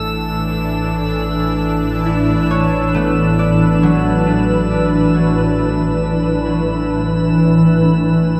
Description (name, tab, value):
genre	ambient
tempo	free time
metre	none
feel	none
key	unclear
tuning	A4 = 439 Hz
part	shimmering ambient pad	sustained chords	0.0-8.4 s	A2 to B4	-16 LUFS	equal	chorus, built-in reverb
part	warm sub bass	bass	0.0-8.4 s	A1	-29 LUFS	equal	none
part	analog drone	drone	0.0-8.4 s	A3 to A4	-35 LUFS	equal	none
part	drifting glass-harmonics texture	texture	0.0-8.4 s	E6	-30 LUFS	equal	chorus, built-in reverb, shimmer reverb
part	concert harp	arpeggios	2.1-7.7 s	F#3 to D5	-24 LUFS	equal	diffuse ambient delay, shimmer reverb
room	wet lush hall reverb, RT60 3.0 s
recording	dreamy mix soaked in reverb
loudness	-15 LUFS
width	mono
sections	0.0-8.4 A section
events	fade-out on sub bass 0.0-8.4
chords	0.0 Bm11/A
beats	free time